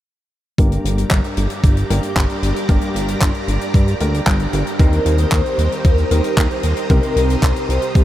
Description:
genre	italo disco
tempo	114 BPM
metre	4/4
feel	straight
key	G minor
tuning	A4 = 439 Hz
part	string machine, full ensemble	sustained chords	0.6-8.0 s	G4 to Eb6	-25 LUFS	equal	ensemble chorus
part	clear baby grand piano	stabs	0.6-8.0 s	G2 to Bb4	-25 LUFS	left 1 dB	low-pass filter, analog delay
part	chorused synth bass	bass	0.6-8.0 s	G1 to G2	-19 LUFS	equal	tube saturation
part	electronic kick drum	drums	0.6-8.0 s	none	-15 LUFS	equal	none
part	tight funk drum kit	drums	0.6-8.0 s	handclaps, hi-hat	-25 LUFS	equal	none
part	mellow synth brass	melody	4.8-8.0 s	G4 to C5	-22 LUFS	equal	chorus, analog delay
room	moderate huge ambient reverb, RT60 8.6 s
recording	dreamy mix soaked in reverb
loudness	-14 LUFS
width	side -13 dB against mid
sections	0.6-8.0 A section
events	filter sweep on grand piano 0.6-8.0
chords	0.6 Gm; 4.8 Eb6; 6.9 Cm7

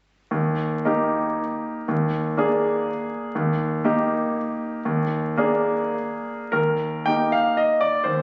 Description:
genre	classical, romantic triple-time dance for piano with dotted rhythms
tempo	95-132 BPM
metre	3/4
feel	rubato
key	Eb major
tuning	A4 = 440 Hz
part	clear grand piano	solo	0.3-8.2 s	Eb2 to G5	-23 LUFS	equal	none
room	light reverb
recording	recorded on a phone in the room, club reverb, vinyl crackle, nothing above 8.0 kHz, faint mains hum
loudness	-23 LUFS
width	mono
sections	0.3-6.5 A section; 6.5-8.2 B section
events	none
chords	0.3 Eb; 1.9 Bb7/Eb; 3.4 Eb; 4.8 Bb7/Eb; 6.5 Eb

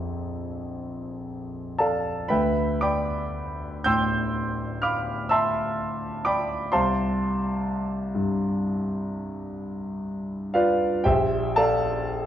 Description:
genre	classical, impressionist solo piano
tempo	36-43 BPM (dotted quarters)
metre	9/8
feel	rubato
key	D minor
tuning	A4 = 440 Hz
part	clear concert grand piano	solo	0.0-12.3 s	Bb1 to G6	-23 LUFS	equal	none
room	wet recital hall reverb, RT60 1.3 s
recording	none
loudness	-23 LUFS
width	side -10 dB against mid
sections	0.0-12.3 A section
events	none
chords	0.0 Bbmaj7#11; 2.3 Dm6; 6.7 C5; 11.0 Bbmaj7

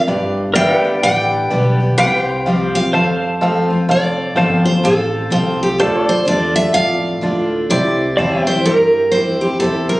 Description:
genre	country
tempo	126 BPM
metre	4/4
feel	swing 61% on 8ths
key	F major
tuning	A4 = 440 Hz
part	picked steel-string acoustic guitar	melody	0.0-10.0 s	G4 to G5	-17 LUFS	equal	none
part	picked steel-string acoustic guitar	accompaniment	0.0-10.0 s	F2 to G4	-20 LUFS	left 1 dB	none
part	pedal steel guitar	sustained chords	0.0-10.0 s	B4 to A5	-20 LUFS	left 1 dB	none
part	clear upright piano	accompaniment	0.1-10.0 s	E4 to F5	-20 LUFS	right 1 dB	none
part	upright bass	bass	0.1-10.0 s	F1 to G2	-22 LUFS	equal	none
room	wet recital hall reverb, RT60 1.5 s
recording	recorded on a phone in the room, club reverb, nothing above 10.7 kHz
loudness	-13 LUFS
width	side -19 dB against mid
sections	0.0-3.9 A section; 3.9-10.0 B section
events	none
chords	0.1 G; 2.0 Csus4; 2.9 F; 5.8 Dm; 7.7 C

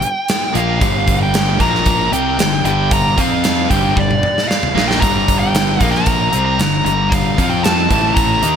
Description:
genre	hard rock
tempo	114 BPM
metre	4/4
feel	straight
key	G dorian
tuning	A4 = 440 Hz
part	nasal lead guitar with a parked wah	melody	0.0-8.6 s	D5 to Bb5	-18 LUFS	equal	overdrive
part	gated 80s drum kit	drums	0.0-8.6 s	hi-hat, kick drum, snare drum, toms	-17 LUFS	right 1 dB	gated reverb
part	cranked stack guitar	riff	0.5-8.6 s	G2 to F4	-22 LUFS	right 11 dB	overdrive, analog chorus
part	sludgy distorted guitar	riff	0.5-8.6 s	G2 to F4	-20 LUFS	left 10 dB	overdrive
part	fuzz fingered electric bass	bass	0.6-8.6 s	G1 to F2	-20 LUFS	equal	overdrive
room	moderate lush hall reverb, RT60 1.9 s, small room ambience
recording	bright 1980s-style digital production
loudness	-12 LUFS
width	side -8 dB against mid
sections	0.0-8.6 A section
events	drum fill 4.0-5.0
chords	0.0 Gm; 1.6 Bb5; 2.1 G5; 3.2 F5; 3.7 Gm; 5.8 Bb5; 6.3 G5; 7.4 F5; 7.9 A5

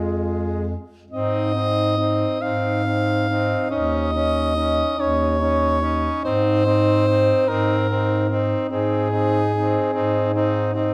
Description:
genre	classical, lyrical piece for single-reed quartet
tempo	43-50 BPM (dotted quarters)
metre	12/8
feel	rubato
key	Ab major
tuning	A4 = 440 Hz
part	clear soprano saxophone	melody	0.0-10.7 s	Ab4 to F5	-26 LUFS	equal	none
part	clear alto saxophone	second line	0.0-10.9 s	Eb4 to F4	-30 LUFS	equal	none
part	clear tenor saxophone	accompaniment	0.0-10.9 s	Ab3 to Db4	-26 LUFS	equal	none
part	warm bass clarinet	bass	0.0-10.9 s	Eb2 to Ab2	-26 LUFS	equal	none
room	moderate recital hall reverb, RT60 1.5 s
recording	none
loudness	-21 LUFS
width	mono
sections	0.0-1.1 A section; 1.1-10.9 B section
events	none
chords	0.0 Fm; 1.1 Ab; 3.7 Dbsus2/Eb; 6.2 Ab

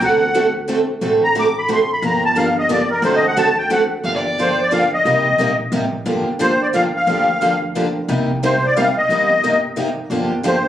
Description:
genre	acoustic string swing (jazz manouche)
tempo	178 BPM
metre	3/4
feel	swing 61% on 8ths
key	G minor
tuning	A4 = 441 Hz
part	musette accordion	melody	0.0-10.7 s	Bb4 to D6	-17 LUFS	left 1 dB	plate reverb
part	picked steel-string acoustic guitar	accompaniment	0.0-10.6 s	C3 to A4	-24 LUFS	left 5 dB	none
part	picked steel-string acoustic guitar	accompaniment	0.0-10.6 s	C3 to A4	-20 LUFS	right 3 dB	none
part	upright bass	bass	0.0-10.7 s	G1 to D2	-26 LUFS	equal	none
part	warm violin	second line	4.0-4.8 s	D5 to F5	-22 LUFS	right 1 dB	none
room	wet studio reverb, RT60 0.5 s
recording	recorded on a phone in the room, club reverb, compression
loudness	-15 LUFS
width	side -11 dB against mid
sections	0.0-4.0 A section; 4.0-10.7 B section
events	accordion solo 0.0-4.0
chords	0.0 D7; 2.0 Gm7; 3.0 D7; 4.0 Gm7; 5.1 Cm7; 6.1 Gm7; 8.1 Cm7; 10.1 Gm7

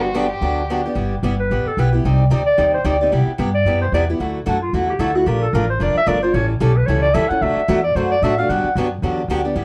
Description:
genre	acoustic string swing (jazz manouche)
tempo	223 BPM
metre	4/4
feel	swing 57% on 8ths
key	G major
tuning	A4 = 440 Hz
part	rich violin	melody	0.0-0.8 s	F#4 to G4	-28 LUFS	equal	tape echo
part	picked steel-string acoustic guitar	accompaniment	0.0-9.6 s	C3 to D5	-23 LUFS	equal	none
part	upright bass	bass	0.0-9.6 s	F1 to A2	-22 LUFS	equal	none
part	clear clarinet	second line	1.4-8.8 s	D4 to F#5	-22 LUFS	equal	none
room	moderate studio ambience, RT60 0.5 s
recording	worn, warbling old tape, cassette tape, warbly pitch drift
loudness	-18 LUFS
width	mono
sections	1.0-9.6 A section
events	clarinet solo 1.0-9.6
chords	0.0 Gmaj7; 1.0 G6; 2.0 Cmadd9; 3.1 Cmaj7; 4.2 Dadd9; 5.3 Bbmaj7; 6.3 A7; 7.4 D; 8.5 Gmaj7

